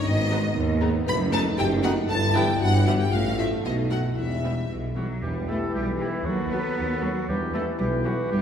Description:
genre	cinematic, playful, whimsical film cue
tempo	117 BPM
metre	2/4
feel	straight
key	E minor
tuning	A4 = 443 Hz
part	marimba with soft mallets	melody	0.0-4.6 s	D#4 to B4	-31 LUFS	left 2 dB	none
part	rich studio violin section	second line	0.0-8.2 s	G4 to B5	-29 LUFS	left 2 dB	none
part	warm French horn section	sustained chords	0.0-8.4 s	G3 to B4	-31 LUFS	left 1 dB	none
part	rich studio cello section	bass	0.1-8.4 s	D#2 to B3	-28 LUFS	right 1 dB	none
part	rich studio double bass section	bass	0.1-8.4 s	E1 to G2	-29 LUFS	right 1 dB	none
part	warm tuba	bass	0.1-8.4 s	E1 to D#2	-31 LUFS	right 2 dB	none
part	warm studio violin section	melody	0.3-8.2 s	B3 to B4	-38 LUFS	left 4 dB	none
part	rich studio viola section	accompaniment	0.3-8.2 s	E3 to G4	-36 LUFS	equal	none
part	warm oboe	second line	5.0-8.4 s	E4 to B4	-34 LUFS	equal	none
part	silver concert flute	second line	5.2-8.4 s	B4	-37 LUFS	left 4 dB	none
part	warm clarinet	second line	5.2-8.4 s	G4 to A4	-38 LUFS	equal	none
part	mellow bassoon	accompaniment	5.2-8.4 s	E3 to F#3	-34 LUFS	right 2 dB	none
room	wet scoring stage reverb, RT60 2.0 s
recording	heard from further back in the room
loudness	-22 LUFS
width	side -8 dB against mid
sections	0.0-5.2 A section; 5.2-8.4 B section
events	none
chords	0.1 G#m; 1.1 B7/F#; 2.1 Em/G; 3.1 F/A; 3.6 B7; 4.2 Em; 6.3 B7/D#; 7.3 Em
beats	| 0.05 0.56 | 1.07 1.57 | 2.09 2.60 | 3.12 3.64 | 4.16 4.69 | 5.22 5.74 | 6.26 6.77 | 7.29 7.80 | 8.31

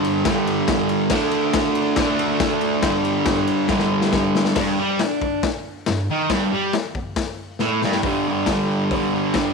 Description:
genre	garage rock duo or trio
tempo	139 BPM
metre	4/4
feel	straight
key	unclear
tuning	A4 = 439 Hz
part	fuzz guitar	riff	0.0-9.5 s	G2 to D4	-19 LUFS	right 1 dB	distortion
part	raw garage drum kit	drums	0.0-9.4 s	crash cymbal, hi-hat, kick drum, ride cymbal, snare drum	-24 LUFS	left 5 dB	none
room	moderate echo chamber reverb, RT60 1.3 s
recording	1960s-style stereo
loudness	-18 LUFS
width	side -4 dB against mid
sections	0.0-4.6 A section; 4.6-8.0 B section; 8.0-9.5 C section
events	drum fill 3.7-4.6, 7.6-8.0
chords	0.0 G5; 1.1 D5; 2.8 G5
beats	0.26 0.69 | 1.11 1.54 1.98 2.41 | 2.84 3.27 3.70 4.13 | 4.56 5.00 5.43 5.86 | 6.30 6.73 7.17 7.60 | 8.04 8.48 8.91 9.35

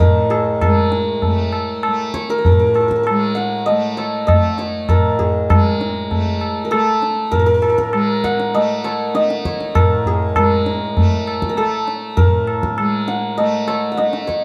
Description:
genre	indian classical, Hindustani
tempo	99 BPM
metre	4/4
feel	straight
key	A raga marwa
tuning	A4 = 438 Hz
part	santur	melody	0.0-14.4 s	G#4 to F#5	-21 LUFS	equal	none
part	tanpura	drone	0.0-14.4 s	A2 to A3	-25 LUFS	equal	none
part	tabla	percussion	0.0-14.4 s	none	-20 LUFS	equal	none
room	light reverb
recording	close, detailed microphones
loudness	-17 LUFS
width	mono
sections	0.0-5.5 A section; 5.5-14.4 B section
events	none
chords	none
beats	0.00 | 0.61 1.22 1.84 2.45 | 3.06 3.67 4.28 4.89 | 5.50 6.11 6.72 7.33 | 7.93 8.54 9.15 9.75 | 10.36 10.96 11.57 12.18 | 12.78 13.38 13.99

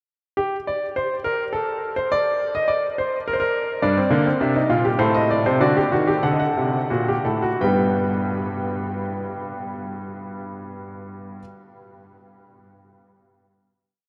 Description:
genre	classical, baroque-style 3-part fugue for grand piano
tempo	82-105 BPM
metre	3/4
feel	straight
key	unclear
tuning	A4 = 440 Hz
part	bright grand piano	solo	0.4-11.4 s	G2 to G5	-22 LUFS	equal	none
room	wet huge ambient reverb, RT60 7.9 s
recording	in a vast, echoing space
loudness	-22 LUFS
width	mono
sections	0.4-7.6 exposition; 7.6-12.0 final chord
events	slowing down 3.0-7.6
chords	0.4 N.C.; 3.8 Gm; 5.0 Adim; 5.6 D; 7.6 G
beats	| 0.38 0.96 1.54 | 2.11 2.69 3.26 | 3.83 4.41 5.00 | 5.61 6.24 6.91 | 7.62 8.35 9.07 | 9.79 10.52 11.24

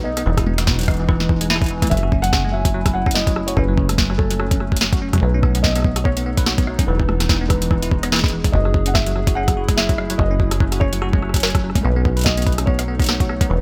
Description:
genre	IDM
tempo	145 BPM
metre	4/4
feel	swing 56% on 16ths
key	F# dorian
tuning	A4 = 440 Hz
part	felt-muted upright piano	melody	0.0-13.6 s	A4 to F#5	-29 LUFS	equal	dub echo
part	warbly tape-like pad	sustained chords	0.0-13.6 s	E3 to G#5	-29 LUFS	equal	chorus, built-in reverb, vintage 12-bit sampler grit
part	deep acid bass	bass	0.0-13.6 s	E1 to B1	-24 LUFS	equal	none
part	bell-like tine electric piano	arpeggios	0.1-13.5 s	E2 to B4	-29 LUFS	equal	delay
part	booming analog drum machine	drums	0.2-13.5 s	hi-hat, rim click, snare drum, toms	-24 LUFS	equal	delay
part	electronic kick drum	drums	0.4-13.5 s	none	-21 LUFS	equal	overdrive
room	little or no reverb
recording	none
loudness	-18 LUFS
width	mono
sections	0.0-13.6 A section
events	none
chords	0.3 Emaj7; 1.9 F#m9; 5.2 B7; 6.9 Emaj7; 8.5 F#m9; 11.8 B7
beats	| 0.26 0.67 1.09 1.50 | 1.91 2.33 2.74 3.16 | 3.57 3.98 4.40 4.81 | 5.22 5.64 6.05 6.47 | 6.88 7.29 7.71 8.12 | 8.54 8.95 9.36 9.78 | 10.19 10.60 11.02 11.43 | 11.85 12.26 12.67 13.09 | 13.50

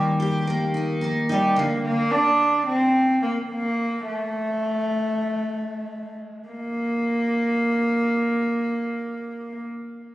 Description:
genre	acoustic pop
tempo	93-110 BPM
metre	4/4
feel	straight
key	unclear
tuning	A4 = 441 Hz
part	warm cello	melody	0.0-9.6 s	G3 to D4	-22 LUFS	equal	plate reverb, digital delay
part	picked steel-string acoustic guitar	accompaniment	0.0-2.4 s	D3 to Bb4	-24 LUFS	left 1 dB	double-tracked left and right, plate reverb
room	wet studio ambience, RT60 0.5 s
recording	recorded on a phone in the room, studio reverb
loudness	-21 LUFS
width	side -16 dB against mid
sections	0.0-6.5 A section; 6.5-10.1 B section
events	slowing down 1.8-6.5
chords	0.0 Eb; 1.6 N.C.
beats	0.20 0.74 1.28 | 1.83 2.38 2.93 3.49 | 4.05 4.64 5.23 5.84 | 6.47 7.12 7.76 8.40 | 9.04

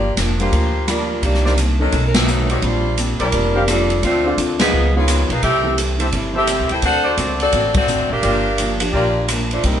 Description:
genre	jazz, big band swing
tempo	171 BPM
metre	4/4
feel	swing 63% on 8ths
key	G minor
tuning	A4 = 438 Hz
part	clear saxophone section	melody	0.0-9.8 s	Eb3 to G5	-19 LUFS	equal	none
part	archtop guitar, miked and amplified	accompaniment	0.0-9.8 s	G2 to F#4	-26 LUFS	left 1 dB	none
part	upright bass	bass	0.0-9.8 s	F1 to D2	-20 LUFS	equal	none
part	swinging big-band drum kit	drums	0.2-9.7 s	hi-hat, kick drum, ride cymbal, rim click, snare drum	-22 LUFS	equal	none
part	warm baby grand piano	accompaniment	0.4-9.3 s	D3 to Bb4	-26 LUFS	equal	none
part	warm trumpet section	stabs	1.4-9.1 s	Eb4 to F5	-24 LUFS	equal	none
room	moderate studio reverb, RT60 0.8 s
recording	band playing live in one room, nothing above 10.9 kHz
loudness	-15 LUFS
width	side -9 dB against mid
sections	0.0-9.8 A section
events	band accent 2.1, 4.5, 7.7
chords	0.0 Gm7; 1.2 Cm9; 1.9 B9; 2.6 Bb69; 4.0 Dm7; 4.7 C#9; 5.4 C6; 6.8 D7; 8.2 Gm7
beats	0.17 0.52 0.87 | 1.22 1.57 1.92 2.27 | 2.62 2.97 3.32 3.67 | 4.02 4.37 4.72 5.07 | 5.42 5.78 6.13 6.48 | 6.83 7.18 7.53 7.88 | 8.23 8.58 8.93 9.28 | 9.63

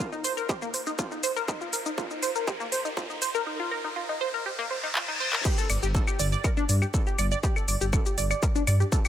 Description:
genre	melodic techno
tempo	121 BPM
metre	4/4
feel	straight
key	G minor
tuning	A4 = 440 Hz
part	tight sequenced synth	arpeggios	0.0-9.1 s	Bb3 to D5	-30 LUFS	equal	chorus, sidechain pumping, dub echo
part	electronic kick drum	drums	0.0-9.0 s	none	-27 LUFS	equal	distortion, overdrive
part	riser and reverse cymbal	sound effects	1.1-5.5 s	none	-36 LUFS	left 1 dB	none
part	techno drum kit	drums	0.1-9.1 s	claves, crash cymbal, handclaps, hi-hat, shaker	-31 LUFS	left 2 dB	none
part	dark detuned saw bass	bass	5.7-8.8 s	G1 to G2	-25 LUFS	equal	sidechain pumping
room	light reverb, digital ambience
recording	high-pass filter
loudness	-25 LUFS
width	side -11 dB against mid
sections	0.0-5.5 A section; 5.5-9.1 B section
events	build-up 0.0-5.5; riser 1.1-5.5; reverse cymbal 4.5-5.5; drum fill 5.0-5.5; drop 5.5-9.1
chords	0.0 Ebsus2; 5.5 G5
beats	0.00 0.49 0.99 | 1.48 1.98 2.48 2.97 | 3.47 3.96 4.46 4.95 | 5.45 5.95 6.44 6.94 | 7.43 7.93 8.43 8.92

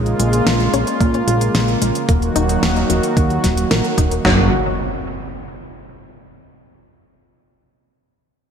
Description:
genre	synthwave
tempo	111 BPM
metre	4/4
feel	straight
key	unclear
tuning	A4 = 440 Hz
part	warm analog pad	sustained chords	0.0-4.5 s	C#3 to F#4	-19 LUFS	right 1 dB	chorus, sidechain pumping
part	fat analog bass	bass	0.0-4.5 s	D#1 to A#2	-19 LUFS	equal	none
part	pop drum kit	drums	0.1-4.2 s	hi-hat, snare drum	-22 LUFS	left 1 dB	slapback echo
part	analog pluck	arpeggios	0.2-4.5 s	D#3 to D#4	-24 LUFS	left 2 dB	chorus, ping-pong delay, slapback echo
part	gated 80s digital drum machine	drums	1.0-4.4 s	kick drum, snare drum	-17 LUFS	right 1 dB	gated reverb, gated reverb snare, overdrive
part	impact	sound effects	4.2-6.4 s	none	-25 LUFS	equal	slapback echo
room	moderate lush hall reverb, RT60 2.2 s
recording	big arena sound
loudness	-14 LUFS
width	side -7 dB against mid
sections	0.0-4.2 A section; 4.2-6.4 B section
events	none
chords	0.0 A#m7; 2.1 D#m; 4.2 N.C.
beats	0.47 1.01 1.55 | 2.09 2.63 3.17 3.71 | 4.25 4.79 5.33 5.87

